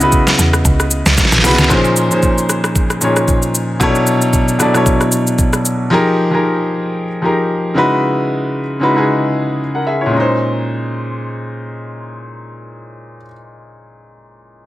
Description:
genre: amapiano.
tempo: 114 BPM.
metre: 4/4.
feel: swing 55% on 16ths.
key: Bb minor.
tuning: A4 = 440 Hz.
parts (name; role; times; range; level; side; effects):
warm grand piano; accompaniment; 0.0-14.7 s; Bb2 to Gb5; -14 LUFS; equal; none.
woody log drum bass; bass; 0.0-1.7 s; Bb1 to Fb2; -16 LUFS; equal; none.
smooth R&B drum kit; drums; 0.0-5.8 s; hi-hat, kick drum, rim click, shaker, snare drum; -15 LUFS; equal; none.
room: light reverb.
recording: none.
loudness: -12 LUFS.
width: side -15 dB against mid.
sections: 0.0-1.7 A section; 1.7-10.1 B section; 10.1-14.3 C section.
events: drop 0.0-1.7; drum fill 1.2-1.7.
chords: 0.0 Dbm11; 1.7 Bbm11; 3.8 Bm11; 5.9 Fm11; 7.8 Dbm11; 10.1 Bbm11.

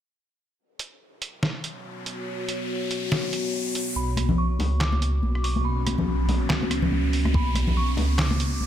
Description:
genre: deep dubstep.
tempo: 142 BPM.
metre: 4/4.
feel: swing 58% on 16ths, half-time.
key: B minor.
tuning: A4 = 440 Hz.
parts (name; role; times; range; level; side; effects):
deep dark ambient pad; sustained chords; 1.8-8.7 s; B3 to C#5; -30 LUFS; equal; chorus, built-in reverb.
riser; sound effects; 1.5-8.7 s; none; -35 LUFS; left 2 dB; none.
trip hop sampler-style drum kit; drums; 0.8-8.5 s; handclaps, hi-hat, rim click, snare drum; -28 LUFS; right 1 dB; studio reverb.
dark detuned synth bell; melody; 4.0-8.7 s; B5 to D6; -34 LUFS; right 1 dB; chorus, phaser, low-pass filter, dub echo.
dark detuned saw bass; bass; 4.0-8.7 s; B1 to C#2; -24 LUFS; equal; tube saturation.
congas and bongos; percussion; 4.2-8.7 s; none; -28 LUFS; left 3 dB; none.
electronic kick drum; drums; 7.3-7.4 s; none; -23 LUFS; equal; overdrive, studio reverb.
room: light reverb.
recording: none.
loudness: -22 LUFS.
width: side -10 dB against mid.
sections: 0.6-4.0 A section; 4.0-8.7 B section.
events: riser 1.5-4.0, 4.0-8.7; build-up 4.0-8.7; filter sweep on ambient pad 4.0-8.7; filter sweep on synth bell 4.0-8.7.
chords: 0.6 B5.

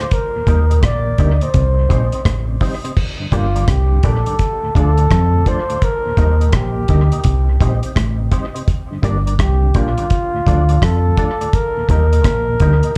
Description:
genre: roots reggae.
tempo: 84 BPM.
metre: 4/4.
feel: swing 64% on 16ths.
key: G minor.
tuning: A4 = 440 Hz.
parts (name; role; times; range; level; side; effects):
breathy flugelhorn; melody; 0.0-13.0 s; F4 to D5; -24 LUFS; equal; dub echo.
electric guitar with an envelope filter; accompaniment; 0.0-12.9 s; D4 to Eb5; -32 LUFS; equal; ensemble chorus, dub echo, slapback echo.
mellow tonewheel organ; accompaniment; 0.0-12.9 s; D2 to Eb4; -29 LUFS; equal; chorus vibrato, slow rotary speaker, dub echo.
deep reggae drum kit; drums; 0.0-13.0 s; crash cymbal, hi-hat, kick drum, rim click; -20 LUFS; equal; none.
mellow electric guitar; riff; 0.5-12.7 s; G2 to F3; -28 LUFS; equal; none.
deep dub fingered electric bass; bass; 0.5-12.8 s; G1 to F2; -17 LUFS; equal; none.
room: little or no reverb.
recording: live gig heard through the venue's PA, club reverb.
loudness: -16 LUFS.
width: mono.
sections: 0.0-3.0 A section; 3.0-13.0 B section.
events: none.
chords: 0.1 Eb; 1.5 Cm; 3.0 Gm; 4.4 Dm; 5.8 Eb; 7.2 Cm; 8.7 Gm; 10.1 Dm; 11.5 Eb.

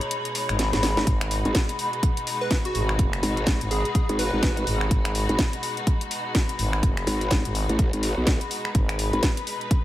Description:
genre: bass house.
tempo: 125 BPM.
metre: 4/4.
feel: swing 59% on 16ths.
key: G# minor.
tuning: A4 = 440 Hz.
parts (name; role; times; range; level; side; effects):
rich symphonic string section; sustained chords; 0.0-9.8 s; B2 to C#5; -32 LUFS; left 1 dB; sidechain pumping.
house drum kit; drums; 0.0-9.8 s; finger snaps, hi-hat, snare drum; -28 LUFS; equal; none.
warbly tape-like pad; texture; 0.0-9.8 s; B5; -31 LUFS; left 1 dB; chorus, built-in reverb, sidechain pumping.
growling FM bass; bass; 0.5-9.1 s; F#1 to G#1; -26 LUFS; equal; overdrive, sidechain pumping.
growl bass; bass; 1.0-9.2 s; G#1 to B1; -25 LUFS; equal; chorus, tube saturation, sidechain pumping.
electronic kick drum; drums; 1.1-9.8 s; none; -23 LUFS; equal; none.
plucky unison lead; melody; 2.4-4.9 s; F#4 to B4; -31 LUFS; right 1 dB; tape echo.
room: light reverb.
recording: none.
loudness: -21 LUFS.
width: side -14 dB against mid.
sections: 0.0-9.8 A section.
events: kick drops out 0.1-1.1; drum fill 0.6-1.1.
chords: 0.0 G#m.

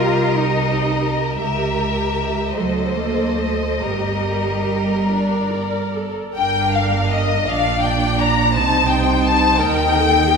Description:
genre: classical, slow romantic movement for string orchestra.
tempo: 46-59 BPM (dotted quarters).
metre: 6/8.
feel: rubato.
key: G minor.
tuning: A4 = 440 Hz.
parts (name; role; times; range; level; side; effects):
warm studio violin section; melody; 0.0-10.4 s; D5 to Bb5; -22 LUFS; left 6 dB; none.
rich studio violin section; second line; 0.0-10.4 s; Bb4 to Bb5; -23 LUFS; left 2 dB; none.
rich studio viola section; accompaniment; 0.0-10.4 s; D4 to D5; -24 LUFS; right 2 dB; none.
rich studio cello section; bass; 0.0-10.4 s; G2 to F4; -23 LUFS; right 3 dB; none.
rich studio double bass section; bass; 0.0-10.4 s; G1 to Eb2; -23 LUFS; right 3 dB; none.
room: wet concert hall reverb, RT60 2.2 s.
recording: none.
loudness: -16 LUFS.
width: side -5 dB against mid.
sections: 0.0-6.4 A section; 6.4-10.4 B section.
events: none.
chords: 0.0 Cm7; 1.4 C#dim7; 2.6 D7b9; 3.8 Gm; 8.6 Cm.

